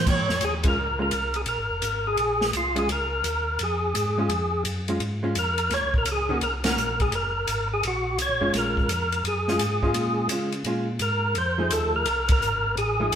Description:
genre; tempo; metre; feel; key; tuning
soul jazz organ trio; 170 BPM; 4/4; swing 65% on 8ths; Bb minor; A4 = 440 Hz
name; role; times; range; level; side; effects
percussive tonewheel organ; melody; 0.0-13.2 s; F4 to Db5; -25 LUFS; equal; slow rotary speaker, overdrive, chorus vibrato
mellow tonewheel organ; bass; 0.0-13.2 s; F1 to Db3; -30 LUFS; equal; slow rotary speaker
swinging big-band drum kit; drums; 0.1-13.2 s; crash cymbal, hi-hat, kick drum, ride cymbal, snare drum; -29 LUFS; equal; none
hollow-body jazz guitar; accompaniment; 0.6-13.2 s; Eb3 to G#4; -29 LUFS; equal; none
room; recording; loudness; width
wet stone room reverb, RT60 1.4 s; band playing live in one room; -22 LUFS; side -8 dB against mid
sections
0.1-13.2 A section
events
band accent 0.6, 6.6, 12.2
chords
0.1 Bbm7; 5.7 Ebm7; 8.5 Bbm7; 11.4 F7#9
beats
| 0.06 0.41 0.77 1.12 | 1.48 1.83 2.18 2.54 | 2.89 3.24 3.60 3.95 | 4.30 4.66 5.01 5.36 | 5.72 6.07 6.42 6.78 | 7.13 7.48 7.83 8.19 | 8.54 8.89 9.25 9.60 | 9.95 10.30 10.66 11.01 | 11.36 11.72 12.07 12.43 | 12.78 13.13

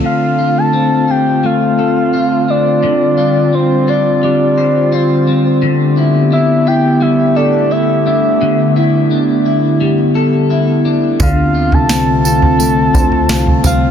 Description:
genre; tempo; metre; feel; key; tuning
dream pop; 86 BPM; 4/4; straight; D dorian; A4 = 440 Hz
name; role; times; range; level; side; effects
warbly tape-like pad; sustained chords; 0.0-13.9 s; D3 to G4; -14 LUFS; equal; chorus, built-in reverb
electric guitar at the edge of break-up; arpeggios; 0.0-13.9 s; D3 to C5; -16 LUFS; left 3 dB; wide subtle chorus, digital delay
plucky analog bass; bass; 0.0, 11.2-13.9 s; C2 to D2; -16 LUFS; equal; none
soft octave-layered synth lead; melody; 0.1-13.9 s; C5 to A5; -16 LUFS; equal; chorus, digital delay
soft vintage rhythm box; drums; 11.2-13.8 s; kick drum, snare drum, tambourine, toms; -15 LUFS; right 1 dB; none
room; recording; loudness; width
light reverb, digital ambience; dense, heavily limited modern master; -10 LUFS; side -8 dB against mid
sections
0.0-13.9 A section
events
none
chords
0.0 Dm7; 2.8 G7sus4/D; 5.6 A7sus4/D; 11.2 Dm7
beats
| 0.04 0.73 1.43 2.13 | 2.83 3.53 4.22 4.92 | 5.62 6.32 7.01 7.71 | 8.41 9.11 9.80 10.50 | 11.20 11.90 12.60 13.29

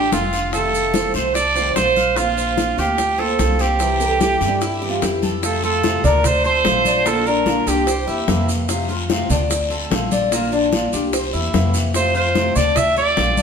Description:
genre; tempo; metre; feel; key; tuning
latin, Cuban son and guajira; 147 BPM; 4/4; straight; F major; A4 = 440 Hz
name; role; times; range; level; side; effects
warm trumpet; melody; 0.0-8.5, 12.0-13.4 s; F4 to E5; -18 LUFS; right 3 dB; none
nylon-string guitar; accompaniment; 0.0-13.4 s; C3 to F4; -25 LUFS; left 2 dB; none
Cuban tres; arpeggios; 0.0-13.4 s; Bb3 to F5; -24 LUFS; left 2 dB; none
upright bass; bass; 0.0-13.4 s; F1 to G2; -24 LUFS; equal; none
bongos; percussion; 0.1-13.4 s; none; -26 LUFS; left 5 dB; none
congas; percussion; 0.1-13.4 s; none; -27 LUFS; left 2 dB; none
guiro; percussion; 0.1-13.4 s; none; -31 LUFS; left 3 dB; none
maracas; percussion; 0.1-13.4 s; none; -31 LUFS; right 5 dB; none
nylon-string guitar; second line; 4.0-5.4 s; D4 to Bb4; -24 LUFS; right 3 dB; none
room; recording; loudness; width
wet stone room reverb, RT60 1.2 s; band playing live in one room; -16 LUFS; side -6 dB against mid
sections
0.0-5.4 A section; 5.4-13.4 B section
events
none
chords
0.0 Dm; 0.5 F7; 2.2 Bbadd9; 3.8 C; 5.4 F; 6.2 Dm7; 7.1 Bb; 7.9 C7; 8.7 F; 9.5 Dm7; 10.3 Bb; 11.1 C7; 11.9 F; 12.8 Dm7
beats
0.13 | 0.54 0.95 1.35 1.76 | 2.17 2.58 2.99 3.39 | 3.80 4.21 4.62 5.02 | 5.43 5.84 6.25 6.65 | 7.06 7.47 7.87 8.28 | 8.69 9.10 9.50 9.91 | 10.32 10.72 11.13 11.54 | 11.95 12.36 12.76 13.17

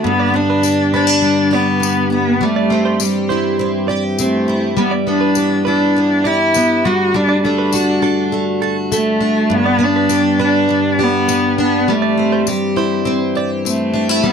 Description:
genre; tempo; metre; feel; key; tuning
acoustic pop; 101 BPM; 4/4; straight; G major; A4 = 438 Hz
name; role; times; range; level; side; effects
picked plugged-in steel-string acoustic guitar; accompaniment; 0.0-14.3 s; G2 to G4; -17 LUFS; equal; double-tracked left and right
warm cello; melody; 0.1-14.3 s; G3 to F#4; -16 LUFS; equal; none
dark brass ensemble; sustained chords; 0.1-14.3 s; G2 to G4; -26 LUFS; left 3 dB; none
direct-recorded clean electric guitar; arpeggios; 0.2-13.5 s; A4 to D5; -23 LUFS; right 10 dB; lush chorus
tambourine; percussion; 0.6-13.8 s; none; -23 LUFS; left 20 dB; none
room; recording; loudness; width
light reverb; dry, close 1970s-style studio recording; -13 LUFS; side -7 dB against mid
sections
0.0-14.3 A section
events
none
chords
0.0 G; 2.4 C/G; 4.8 Em/G; 6.8 D/G; 9.5 G; 11.9 C/G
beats
| 0.05 0.64 1.23 1.82 | 2.41 3.00 3.59 4.18 | 4.77 5.36 5.96 6.55 | 7.14 7.73 8.32 8.91 | 9.51 10.10 10.69 11.28 | 11.88 12.47 13.06 13.65 | 14.25

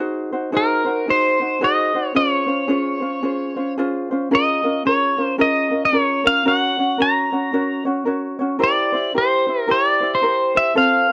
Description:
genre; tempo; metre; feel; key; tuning
hawaiian; 111 BPM; 4/4; swing 61% on 8ths; Db major, Bb minor from 4.3 s; A4 = 441 Hz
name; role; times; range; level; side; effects
ukulele; accompaniment; 0.0-11.1 s; C4 to Db5; -23 LUFS; equal; none
pedal steel guitar; melody; 0.6-11.1 s; Bb4 to Bb5; -20 LUFS; equal; none
room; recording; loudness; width
light reverb; dark, warm production; -19 LUFS; mono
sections
0.0-4.3 A section; 4.3-11.1 B section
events
none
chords
0.0 Ab7; 2.2 Dbmaj7; 4.3 Bbm7; 6.5 Gb; 8.6 C7/E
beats
| 0.00 0.54 1.07 1.61 | 2.15 2.69 3.23 3.77 | 4.30 4.84 5.38 5.92 | 6.46 7.00 7.54 8.08 | 8.62 9.15 9.69 10.23 | 10.77

